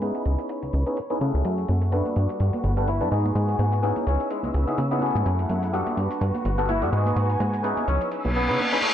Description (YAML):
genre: filtered disco house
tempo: 126 BPM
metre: 4/4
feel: swing 56% on 16ths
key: unclear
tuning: A4 = 440 Hz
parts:
  - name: overdriven clav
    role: accompaniment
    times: 0.0-8.9 s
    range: G3 to A4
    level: -27 LUFS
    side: left 1 dB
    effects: phaser, vintage 12-bit sampler grit, low-pass filter
  - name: clear studio violin section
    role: sustained chords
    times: 0.0-8.9 s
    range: A3 to E6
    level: -32 LUFS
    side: left 1 dB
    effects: low-pass filter
  - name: plucky analog bass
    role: bass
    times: 0.0-8.6 s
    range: G1 to C#3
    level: -23 LUFS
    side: equal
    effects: low-pass filter
  - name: electronic hi-hat and shaker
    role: drums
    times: 0.0-8.9 s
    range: none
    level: -47 LUFS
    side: right 3 dB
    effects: overdrive, low-pass filter on hats, low-pass filter on perc
  - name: tambourine and congas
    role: percussion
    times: 1.4-8.8 s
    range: none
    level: -34 LUFS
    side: right 3 dB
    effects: low-pass filter on perc
  - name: bright horn section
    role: melody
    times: 2.9-8.7 s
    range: G#3 to E4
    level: -30 LUFS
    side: left 2 dB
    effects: low-pass filter, dub echo
  - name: reverse cymbal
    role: sound effects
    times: 8.3-8.9 s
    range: none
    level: -23 LUFS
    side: left 1 dB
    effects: none
room: light reverb, small room ambience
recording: none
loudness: -22 LUFS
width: side -10 dB against mid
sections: 0.0-8.9 A section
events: filter sweep 0.0-8.9; reverse cymbal 8.3-8.9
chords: 0.3 C#m7; 1.4 F#m7; 2.2 Gmaj7; 3.1 G#m7; 4.1 C#m7; 5.3 F#m7; 6.0 Gmaj7; 6.9 G#m7; 7.9 C#m7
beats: 0.02 0.50 0.97 | 1.45 1.93 2.40 2.88 | 3.35 3.83 4.31 4.78 | 5.26 5.73 6.21 6.69 | 7.16 7.64 8.12 8.59